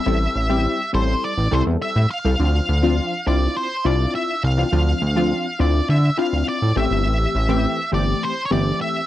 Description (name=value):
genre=early-eighties boogie funk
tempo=103 BPM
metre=4/4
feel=straight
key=D minor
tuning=A4 = 440 Hz
part: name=octave-fuzz lead guitar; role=melody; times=0.0-9.1 s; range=C5 to F5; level=-24 LUFS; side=right 1 dB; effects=distortion
part: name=funky polysynth comp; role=accompaniment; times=0.0-9.0 s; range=E3 to A4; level=-23 LUFS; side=left 2 dB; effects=chorus
part: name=chorused synth bass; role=bass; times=0.1-8.7 s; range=G1 to D3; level=-19 LUFS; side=equal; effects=none
room=little or no reverb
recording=dry, close 1970s-style studio recording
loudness=-17 LUFS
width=side -14 dB against mid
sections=0.0-9.1 A section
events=none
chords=0.0 Am7; 2.4 Dm9; 6.8 Am7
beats=| 0.06 0.65 1.23 1.81 | 2.39 2.98 3.56 4.14 | 4.72 5.31 5.89 6.47 | 7.05 7.64 8.22 8.80